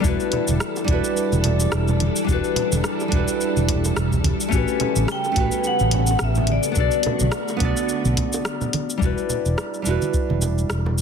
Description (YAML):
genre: sunset chillout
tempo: 107 BPM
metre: 4/4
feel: swing 56% on 16ths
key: E dorian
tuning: A4 = 440 Hz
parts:
  - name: nylon-string guitar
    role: accompaniment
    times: 0.0-11.0 s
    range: G3 to D5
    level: -24 LUFS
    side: moving between left 9 dB and right 7 dB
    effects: auto-pan, tape echo
  - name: soft string machine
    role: sustained chords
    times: 0.0-9.0 s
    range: C#3 to A4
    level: -27 LUFS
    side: equal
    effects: ensemble chorus
  - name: fretless electric bass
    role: bass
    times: 0.0-11.0 s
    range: E1 to B1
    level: -22 LUFS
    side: equal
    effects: wide subtle chorus
  - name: deep house drum kit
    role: drums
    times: 0.0-11.0 s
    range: cabasa, hi-hat, rim click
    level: -29 LUFS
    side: equal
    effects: none
  - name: electronic kick drum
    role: drums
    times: 0.0-10.3 s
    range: none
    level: -25 LUFS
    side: equal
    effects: overdrive
  - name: bongos and congas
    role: percussion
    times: 0.3-11.0 s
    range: none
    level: -29 LUFS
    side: right 4 dB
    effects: none
  - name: vibraphone with medium hard mallets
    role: melody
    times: 5.1-7.3 s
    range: D5 to G5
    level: -25 LUFS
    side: left 2 dB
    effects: tape echo
room: moderate plate reverb, RT60 2.2 s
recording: dense, heavily limited modern master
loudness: -19 LUFS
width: side -6 dB against mid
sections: 0.0-9.0 A section; 9.0-11.0 B section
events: break 8.5-9.0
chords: 0.0 Em9; 4.5 A13; 6.8 Bm7; 9.0 Em9